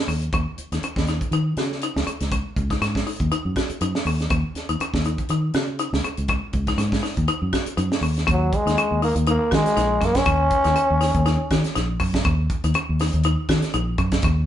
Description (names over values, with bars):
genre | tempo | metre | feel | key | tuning
afrobeat | 121 BPM | 4/4 | swing 56% on 16ths | Eb minor | A4 = 441 Hz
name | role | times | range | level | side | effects
marimba with hard mallets | arpeggios | 0.1-14.3 s | Db4 to Gb4 | -27 LUFS | left 4 dB | none
fingered electric bass | bass | 0.1-14.4 s | Bb1 to Eb3 | -23 LUFS | equal | none
tight funk drum kit | drums | 0.1-14.4 s | hi-hat, kick drum, snare drum | -26 LUFS | right 1 dB | none
growling trombone | melody | 8.3-11.7 s | Gb3 to Db4 | -20 LUFS | equal | none
room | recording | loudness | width
wet studio reverb, RT60 0.7 s | band playing live in one room, nothing above 11.0 kHz | -19 LUFS | side -11 dB against mid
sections
0.0-8.3 A section; 8.3-14.5 B section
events
none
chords
0.0 Eb7(no3); 8.3 Ebm7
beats
| 0.33 0.82 1.32 1.82 | 2.32 2.81 3.31 3.81 | 4.31 4.80 5.30 5.80 | 6.29 6.79 7.29 7.78 | 8.28 8.78 9.27 9.77 | 10.27 10.76 11.26 11.75 | 12.25 12.75 13.24 13.74 | 14.23